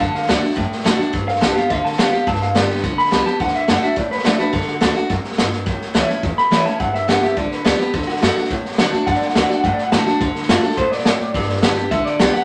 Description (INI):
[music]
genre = rockabilly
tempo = 212 BPM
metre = 4/4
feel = straight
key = D major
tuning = A4 = 443 Hz
[part]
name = electric guitar through a small old amp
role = melody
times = 0.0-12.4 s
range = F4 to B5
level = -23 LUFS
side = equal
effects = none
[part]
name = picked steel-string acoustic guitar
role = accompaniment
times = 0.0-12.4 s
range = E2 to G4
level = -22 LUFS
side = equal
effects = none
[part]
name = upright bass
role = bass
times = 0.0-12.4 s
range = G1 to C3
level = -31 LUFS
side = equal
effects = none
[part]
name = vintage drum kit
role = drums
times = 0.0-12.4 s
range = hi-hat, kick drum, snare drum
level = -22 LUFS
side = equal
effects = none
[sound]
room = moderate studio reverb, RT60 0.6 s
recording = none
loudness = -18 LUFS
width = mono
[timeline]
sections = 0.0-10.2 A section; 10.2-12.4 B section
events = clean electric guitar solo 10.2-12.4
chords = 0.0 D; 1.1 G; 3.4 D; 5.7 A; 6.8 G; 7.9 D; 11.3 G